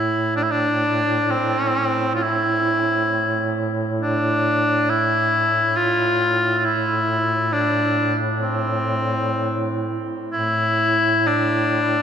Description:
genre	caucasian folk, Caucasian lament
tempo	62-70 BPM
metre	3/4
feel	rubato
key	A minor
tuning	A4 = 440 Hz
part	clear cor anglais	melody	0.0-12.0 s	C4 to F4	-19 LUFS	left 1 dB	slapback echo
part	warm duduk	drone	0.0-12.0 s	A2	-24 LUFS	right 2 dB	none
room	wet cathedral reverb, RT60 6.7 s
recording	in a vast, echoing space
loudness	-18 LUFS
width	side -8 dB against mid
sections	0.0-12.0 A section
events	none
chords	none

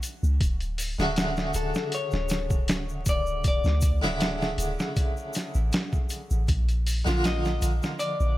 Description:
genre	trip hop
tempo	79 BPM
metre	4/4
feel	swing 53% on 16ths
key	unclear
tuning	A4 = 440 Hz
part	boom bap sampler-style drum kit	drums	0.0-8.2 s	hi-hat, kick drum, snare drum	-27 LUFS	equal	studio reverb
part	tube shaker	percussion	0.0-8.3 s	none	-41 LUFS	left 2 dB	none
part	soft 808-style bass	bass	0.2-8.4 s	D1 to D2	-26 LUFS	equal	tube saturation
part	harpsichord	accompaniment	1.0-8.4 s	C#3 to F#4	-31 LUFS	right 1 dB	tremolo, low-pass filter, tape echo
part	clean electric guitar	melody	1.6-8.4 s	A4 to Eb5	-32 LUFS	left 4 dB	tape echo
room	little or no reverb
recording	vinyl crackle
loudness	-24 LUFS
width	side -16 dB against mid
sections	0.0-8.4 A section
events	none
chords	0.4 Dmaj7; 6.5 Bb

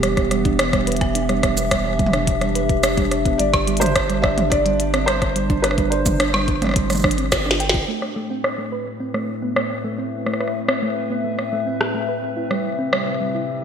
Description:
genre	IDM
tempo	107 BPM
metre	4/4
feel	straight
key	A minor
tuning	A4 = 440 Hz
part	warbly tape-like pad	sustained chords	0.0-13.6 s	A2 to E5	-24 LUFS	equal	chorus, built-in reverb
part	thumb-piano-like synth pluck	arpeggios	0.0-13.4 s	G3 to G5	-26 LUFS	right 3 dB	chorus, digital delay
part	round analog bass	bass	0.0-7.9 s	E1 to G1	-25 LUFS	equal	none
part	glitchy drum kit	drums	0.0-13.0 s	cabasa, hi-hat, rim click, snare drum, toms	-22 LUFS	equal	low-pass filter on hats, low-pass filter on snare, low-pass filter on toms, low-pass filter on perc, gated reverb, ping-pong delay
part	electronic kick drum	drums	0.2-7.9 s	none	-23 LUFS	equal	none
part	felt-muted upright piano	melody	3.4-7.6 s	B4 to E5	-24 LUFS	equal	wide subtle chorus, ping-pong delay
room	wet lush hall reverb, RT60 2.3 s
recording	bright 1980s-style digital production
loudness	-18 LUFS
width	side -7 dB against mid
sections	0.0-7.9 A section; 7.9-13.6 B section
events	drum fill 7.3-7.9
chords	0.0 Em7; 3.4 Gsus4; 7.9 Amadd9; 12.4 C

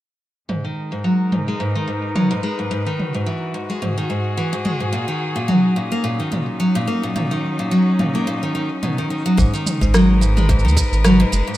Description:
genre	folktronica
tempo	108 BPM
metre	4/4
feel	swing 56% on 16ths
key	unclear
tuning	A4 = 438 Hz
part	muted string quartet	sustained chords	0.5-11.6 s	F#3 to B4	-25 LUFS	left 2 dB	low-pass filter
part	picked steel-string acoustic guitar	arpeggios	0.5-11.6 s	G#2 to A#3	-19 LUFS	equal	low-pass filter
part	organic electronic drum kit	drums	0.5-11.6 s	rim click, shaker, toms	-24 LUFS	right 1 dB	small room ambience
part	warm sub bass	bass	9.4-11.4 s	F#1 to D#2	-16 LUFS	equal	none
part	electronic kick drum	drums	9.4-10.9 s	none	-20 LUFS	equal	small room ambience
room	little or no reverb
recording	rough home demo mix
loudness	-17 LUFS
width	side -15 dB against mid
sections	0.5-9.4 A section; 9.4-11.6 B section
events	none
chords	0.5 G#m7; 2.7 Emaj7; 4.9 Bmaj7 (rootless); 9.4 G#m7

